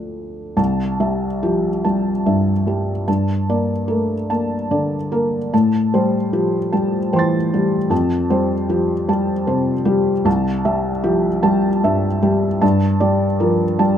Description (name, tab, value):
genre	neoclassical minimalist piano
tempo	50 BPM (dotted quarters)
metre	6/8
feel	rubato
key	unclear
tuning	A4 = 440 Hz
part	felt-muted upright piano	solo	0.0-14.0 s	C2 to A6	-16 LUFS	equal	none
room	light reverb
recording	rough home demo mix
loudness	-16 LUFS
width	side -9 dB against mid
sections	0.6-14.0 A section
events	none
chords	0.0 Dm; 0.6 C6; 3.1 Gmadd9; 5.5 Am7; 7.9 Fadd9; 10.3 C6; 12.6 Gmadd9